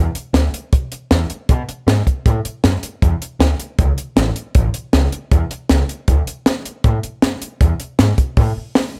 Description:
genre	rockabilly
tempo	157 BPM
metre	4/4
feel	straight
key	A major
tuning	A4 = 440 Hz
part	upright bass	bass	0.0-9.0 s	A1 to B2	-20 LUFS	equal	none
part	compact cocktail drum kit	drums	0.2-8.8 s	hi-hat, kick drum, snare drum	-18 LUFS	equal	none
room	light reverb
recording	none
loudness	-17 LUFS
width	mono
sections	0.0-8.4 A section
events	none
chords	none

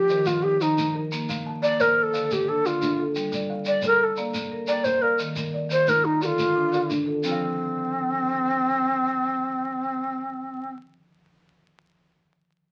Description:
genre	southern african traditional, mbira-style interlocking cycle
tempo	118 BPM (dotted quarters)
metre	12/8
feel	straight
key	F mixolydian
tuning	A4 = 440 Hz
part	breathy bright low Native American-style wooden flute	melody	0.0-10.7 s	C4 to D5	-24 LUFS	equal	none
part	kalimba	arpeggios	0.0-10.8 s	D3 to A5	-36 LUFS	equal	none
part	marimba with medium hard mallets	arpeggios	0.0-10.8 s	D3 to F5	-33 LUFS	equal	none
part	shekere	percussion	0.1-7.4 s	none	-36 LUFS	equal	none
room	moderate studio reverb, RT60 0.6 s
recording	very old 78 rpm record, vinyl crackle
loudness	-24 LUFS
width	mono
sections	0.0-7.2 A section; 7.2-11.3 B section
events	none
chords	0.1 Eb; 1.1 Bb; 2.1 Dm; 3.2 Gm; 4.2 Bb; 5.2 Eb; 6.2 Dm; 7.2 F5

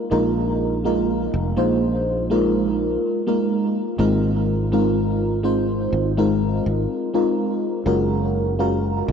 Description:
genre	vaporwave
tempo	62 BPM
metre	4/4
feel	straight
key	Ab major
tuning	A4 = 440 Hz
part	mellow FM electric piano	accompaniment	0.0-9.1 s	Ab3 to C5	-20 LUFS	equal	phaser, wide subtle chorus, diffuse ambient delay
part	sustaining fretless electric bass	bass	0.1-9.1 s	F1 to Db2	-24 LUFS	equal	none
room	wet huge ambient reverb, RT60 4.0 s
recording	dreamy mix soaked in reverb, nothing above 11.0 kHz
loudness	-18 LUFS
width	side -7 dB against mid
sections	0.0-4.0 A section; 4.0-9.1 B section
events	none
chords	0.0 Bb7sus4; 4.0 Ab69; 7.9 Gbmaj9

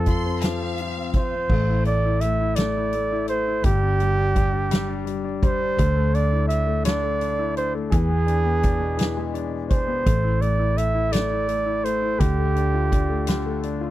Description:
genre	six-eight pop ballad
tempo	56 BPM (dotted quarters)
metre	6/8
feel	straight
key	A minor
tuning	A4 = 435 Hz
part	breathy flugelhorn	melody	0.0-13.7 s	G4 to E5	-25 LUFS	right 3 dB	none
part	warm concert grand piano	accompaniment	0.0-13.9 s	B2 to F4	-27 LUFS	left 6 dB	none
part	vintage muted fingered electric bass	bass	0.0-13.9 s	G1 to F2	-24 LUFS	equal	none
part	warm symphonic violin section	second line	0.1-1.5 s	F5 to C6	-32 LUFS	left 1 dB	none
part	soft-mallet drum kit	drums	0.1-13.8 s	crash cymbal, hi-hat, kick drum, snare drum	-24 LUFS	equal	none
room	little or no reverb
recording	dry, close 1970s-style studio recording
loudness	-20 LUFS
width	side -14 dB against mid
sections	0.0-1.5 A section; 1.5-13.9 A section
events	none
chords	0.0 F; 1.5 A5; 3.6 G5; 5.8 Dsus2; 7.9 E7; 10.1 A5; 12.2 Dm

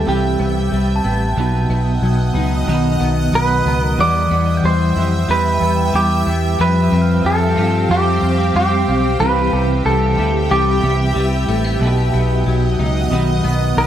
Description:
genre	dream pop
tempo	92 BPM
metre	4/4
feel	straight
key	C major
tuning	A4 = 440 Hz
part	clean electric guitar	melody	0.0-13.9 s	G4 to D5	-18 LUFS	right 2 dB	analog delay
part	clean electric guitar	accompaniment	0.0-13.9 s	B2 to C5	-23 LUFS	right 4 dB	harmonic tremolo, wide subtle chorus, analog delay
part	shimmering ambient pad	sustained chords	0.0-13.9 s	C4 to E6	-23 LUFS	equal	chorus, built-in reverb
part	semi-hollow electric guitar	arpeggios	0.0-13.9 s	B2 to F4	-21 LUFS	left 4 dB	analog chorus, analog delay
part	vintage muted fingered electric bass	bass	0.0-13.9 s	A1 to G2	-19 LUFS	equal	none
part	glockenspiel with soft plastic mallets	texture	1.0-9.5 s	G5 to C7	-30 LUFS	right 2 dB	analog delay
room	moderate spring reverb, RT60 1.4 s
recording	echo-heavy mix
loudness	-14 LUFS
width	side -10 dB against mid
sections	0.0-9.2 A section; 9.2-13.9 A section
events	none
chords	0.0 Cmaj7; 1.4 B; 4.0 Em; 6.6 Fsus2; 9.2 Cmaj7; 11.8 B

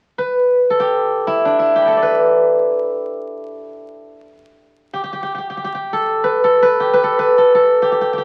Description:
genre	chinese traditional, Chinese solo plucked strings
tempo	free time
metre	none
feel	none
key	G gong mode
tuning	A4 = 440 Hz
part	steel-string zither	solo	0.2-8.2 s	D4 to B5	-16 LUFS	equal	none
room	moderate studio reverb, RT60 0.8 s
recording	very old 78 rpm record, vinyl crackle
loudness	-16 LUFS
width	mono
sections	0.0-8.2 A section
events	none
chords	none

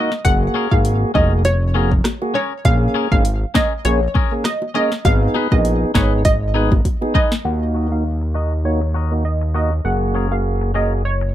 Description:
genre	dancehall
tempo	100 BPM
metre	4/4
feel	swing 56% on 16ths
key	Eb minor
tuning	A4 = 440 Hz
part	analog pluck	melody	0.0-11.3 s	Db5 to Gb5	-22 LUFS	right 1 dB	chorus, low-pass filter, digital delay
part	tonewheel organ	accompaniment	0.0-11.0 s	Bb3 to Ab4	-22 LUFS	right 1 dB	stopped rotary speaker, low-pass filter
part	twangy electric guitar	arpeggios	0.0-11.3 s	Db4 to Eb5	-25 LUFS	left 8 dB	low-pass filter
part	afro-pop drum kit	drums	0.1-7.4 s	hi-hat, kick drum, rim click, snare drum	-18 LUFS	equal	none
part	fat analog bass	bass	0.2-11.3 s	F1 to Eb2	-18 LUFS	equal	none
part	bongos	percussion	0.2-7.3 s	none	-28 LUFS	right 2 dB	none
room	light reverb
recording	dark, warm production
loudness	-15 LUFS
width	side -12 dB against mid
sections	0.0-7.5 A section; 7.5-11.3 B section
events	drum fill 6.8-7.5; filter sweep 7.5-11.3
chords	0.2 Gbadd9; 2.6 Bbm7; 5.0 Abm; 7.5 Ebm; 9.8 Gbadd9

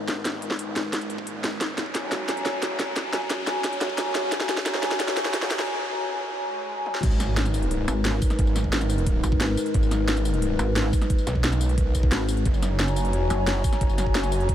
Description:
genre	dark technical drum and bass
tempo	177 BPM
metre	4/4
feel	straight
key	G# minor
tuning	A4 = 444 Hz
part	dark analog pad	sustained chords	0.0-14.5 s	G#3 to A#5	-28 LUFS	left 1 dB	wide subtle chorus, sidechain pumping
part	snarling distorted saw bass	bass	0.0-14.5 s	E1 to F#2	-27 LUFS	equal	tube saturation, sidechain pumping, high-pass filter
part	riser, swell and impact	sound effects	0.0-8.4 s	none	-36 LUFS	equal	none
part	drum and bass drum kit	drums	0.1-14.5 s	crash cymbal, hi-hat, snare drum, tambourine, toms	-28 LUFS	equal	small room ambience
part	electronic kick drum	drums	0.1-14.5 s	none	-24 LUFS	equal	high-pass filter on kick, small room ambience, high-pass filter on room
part	pulsing pluck wobble bass	bass	7.9-13.6 s	F#1 to G#1	-24 LUFS	equal	chorus
room	moderate huge ambient reverb, RT60 7.5 s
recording	dreamy mix soaked in reverb, high-pass filter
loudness	-22 LUFS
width	side -11 dB against mid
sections	0.0-7.0 A section; 7.0-14.5 B section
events	build-up 0.0-7.0; drum fill 0.0-5.7, 6.9; riser 0.0-5.7; break 5.7-7.0; swell 6.4-7.0; drop 7.0-14.5; impact 7.0-8.4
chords	0.0 G#m; 1.6 F#; 7.0 G#m; 12.5 F#

